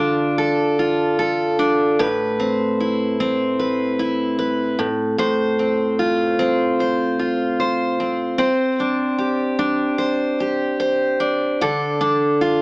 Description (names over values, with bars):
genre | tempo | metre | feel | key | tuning
pop | 75 BPM | 4/4 | straight | C major | A4 = 439 Hz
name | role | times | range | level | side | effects
picked steel-string acoustic guitar | solo | 0.0-12.6 s | A2 to C5 | -17 LUFS | equal | none
room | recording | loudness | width
light reverb | AM radio sound | -17 LUFS | side -28 dB against mid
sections
0.0-12.6 A section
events
none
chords
0.0 Dm; 2.0 Amadd9; 4.8 F/A; 8.4 Csus2; 11.6 Dm